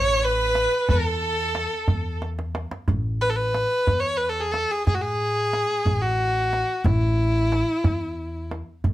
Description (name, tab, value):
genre	Persian modal ensemble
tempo	60 BPM (dotted quarters)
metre	6/8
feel	straight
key	A dastgah mahur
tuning	A4 = 441 Hz
part	clear kamancheh	melody	0.0-8.5 s	E4 to C#5	-23 LUFS	equal	none
part	rich symphonic violin section	second line	0.0-2.2 s	A4 to C#5	-28 LUFS	right 2 dB	none
part	upright bass	bass	0.0-8.9 s	A1 to A2	-27 LUFS	equal	none
part	tombak	percussion	0.6-8.9 s	none	-24 LUFS	right 1 dB	none
room	light reverb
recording	none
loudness	-21 LUFS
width	side -15 dB against mid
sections	0.0-2.9 A section; 2.9-8.9 B section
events	drum fill 2.2-2.9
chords	none